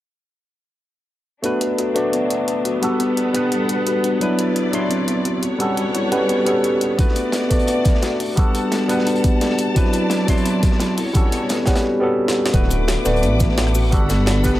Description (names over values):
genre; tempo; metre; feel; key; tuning
liquid drum and bass; 173 BPM; 4/4; straight; D major; A4 = 444 Hz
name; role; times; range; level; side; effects
tine electric piano; accompaniment; 1.4-14.6 s; F#3 to C6; -20 LUFS; equal; overdrive, phaser, tape echo
clear studio string section; sustained chords; 1.4-14.6 s; F#3 to D6; -27 LUFS; left 1 dB; sidechain pumping, low-pass filter
kalimba; arpeggios; 1.4-14.6 s; B3 to F#5; -24 LUFS; left 2 dB; low-pass filter, dub echo
jungle sampler-style drum kit; drums; 1.4-14.5 s; hi-hat, rim click, shaker, snare drum; -26 LUFS; equal; none
crunchy breakbeat drum kit; drums; 7.0-14.6 s; hi-hat, snare drum; -29 LUFS; equal; high-pass filter on hats, high-pass filter on snare, high-pass filter on room
electronic kick drum; drums; 7.0-14.5 s; none; -18 LUFS; equal; overdrive
dark detuned saw bass; bass; 12.5-14.6 s; D1 to A1; -19 LUFS; equal; none
room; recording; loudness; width
light reverb; none; -16 LUFS; side -14 dB against mid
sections
1.4-12.5 A section; 12.5-14.6 B section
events
filter sweep on string section 1.4-12.5; drum fill 12.3; drop 12.5-14.6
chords
1.4 D6; 2.8 Gmaj9; 4.2 Cmaj9#11; 5.4 A13; 7.0 D6; 8.4 Gmaj9; 9.8 Cmaj9#11; 11.0 A13; 12.5 D6; 13.9 Gmaj9